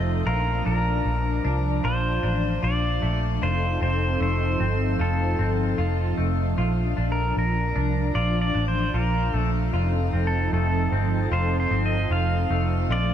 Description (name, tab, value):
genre	dream pop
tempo	76 BPM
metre	4/4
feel	straight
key	Bb major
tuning	A4 = 440 Hz
part	pedal steel guitar	melody	0.0-13.1 s	A4 to F5	-29 LUFS	right 1 dB	digital delay
part	warm analog pad	sustained chords	0.0-13.1 s	F3 to A4	-28 LUFS	right 1 dB	chorus
part	semi-hollow electric guitar	arpeggios	0.0-13.1 s	F2 to F4	-31 LUFS	left 4 dB	wide subtle chorus, digital delay
part	vintage muted fingered electric bass	bass	0.0-13.1 s	F1 to C2	-24 LUFS	equal	none
room	light reverb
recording	dark, warm production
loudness	-21 LUFS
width	side -10 dB against mid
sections	0.0-13.1 A section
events	none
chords	0.3 Bbmaj7; 3.4 F7; 6.6 Bbmaj7; 9.7 F7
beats	| 0.26 1.05 1.84 2.63 | 3.42 4.21 5.00 5.79 | 6.58 7.37 8.16 8.95 | 9.74 10.53 11.32 12.11 | 12.90